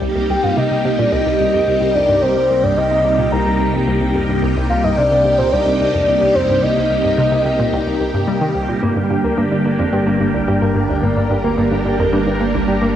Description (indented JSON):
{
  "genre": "ambient, sequencer-driven space music",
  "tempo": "109 BPM",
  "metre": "4/4",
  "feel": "straight",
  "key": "C minor",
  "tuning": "A4 = 440 Hz",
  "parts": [
    { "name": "phased string machine", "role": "sustained chords", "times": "0.0-13.0 s", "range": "C3 to Bb4", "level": "-19 LUFS", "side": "equal", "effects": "ensemble chorus, phaser, cassette tape, plate reverb" },
    { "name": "analog pluck", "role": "riff", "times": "0.0-12.9 s", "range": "C2 to G3", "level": "-21 LUFS", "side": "equal", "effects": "chorus, cassette tape, ping-pong delay" },
    { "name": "fat analog bass", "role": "bass", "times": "0.0-13.0 s", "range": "G1 to C2", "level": "-27 LUFS", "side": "equal", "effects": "none" },
    { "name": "bubbling stepped-filter texture", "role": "texture", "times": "0.0-13.0 s", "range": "D4 to G5", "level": "-29 LUFS", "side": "right 2 dB", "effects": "chorus, built-in reverb, cassette tape, plate reverb" },
    { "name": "soft octave-layered synth lead", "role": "melody", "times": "0.3-8.3 s", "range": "C5 to Bb5", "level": "-16 LUFS", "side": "equal", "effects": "chorus, tremolo, cassette tape, plate reverb, ping-pong delay" },
    { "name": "mellow electric guitar", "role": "arpeggios", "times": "8.8-12.9 s", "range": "Bb3 to Bb4", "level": "-20 LUFS", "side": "right 1 dB", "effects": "auto-pan, cassette tape, ping-pong delay" }
  ],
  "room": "wet small room reverb, RT60 0.5 s",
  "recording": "home recording on cassette, nothing above 10.9 kHz",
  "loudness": "-14 LUFS",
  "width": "side -10 dB against mid",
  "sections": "0.0-13.0 A section",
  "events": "fade-in on analog synth bass 0.0-13.0; fade-in on synth texture 0.0-13.0; filter sweep on synth arpeggio sound 0.0-13.0",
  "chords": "0.0 Cm7; 8.8 Gm",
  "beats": "| 0.02 0.57 1.12 1.67 | 2.22 2.77 3.33 3.88 | 4.43 4.98 5.53 6.08 | 6.63 7.18 7.73 8.28 | 8.83 9.38 9.93 10.48 | 11.03 11.58 12.13 12.68"
}